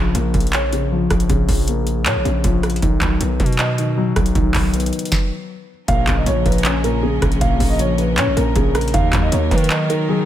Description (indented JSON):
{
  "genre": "hip hop, trap",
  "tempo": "157 BPM",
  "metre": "4/4",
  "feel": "half-time",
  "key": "Bb phrygian",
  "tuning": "A4 = 440 Hz",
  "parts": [
    { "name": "felt-muted upright piano", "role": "accompaniment", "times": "0.0-10.3 s", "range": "Bb2 to D#5", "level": "-21 LUFS", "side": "left 3 dB", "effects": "low-pass filter" },
    { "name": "distorted 808-style bass", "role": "bass", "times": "0.0-10.2 s", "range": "Bb1 to Eb3", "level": "-20 LUFS", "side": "right 1 dB", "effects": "distortion" },
    { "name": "booming analog drum machine", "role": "drums", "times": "0.1-10.0 s", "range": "handclaps, hi-hat, kick drum, rim click, snare drum", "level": "-20 LUFS", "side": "right 1 dB", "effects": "none" },
    { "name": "dark concert grand piano", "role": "melody", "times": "5.9-10.3 s", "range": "Ab4 to F5", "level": "-22 LUFS", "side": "right 2 dB", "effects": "low-pass filter, tape echo" },
    { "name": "clear symphonic string section", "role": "sustained chords", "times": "5.9-10.3 s", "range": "F3 to Bb4", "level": "-28 LUFS", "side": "right 2 dB", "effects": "none" }
  ],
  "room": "studio reverb",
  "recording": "none",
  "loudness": "-15 LUFS",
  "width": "side -12 dB against mid",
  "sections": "0.0-5.9 A section; 5.9-10.3 B section",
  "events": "stop 5.1-5.9",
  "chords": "0.0 Bbm; 2.8 B; 5.9 Bbm; 8.9 Ebm"
}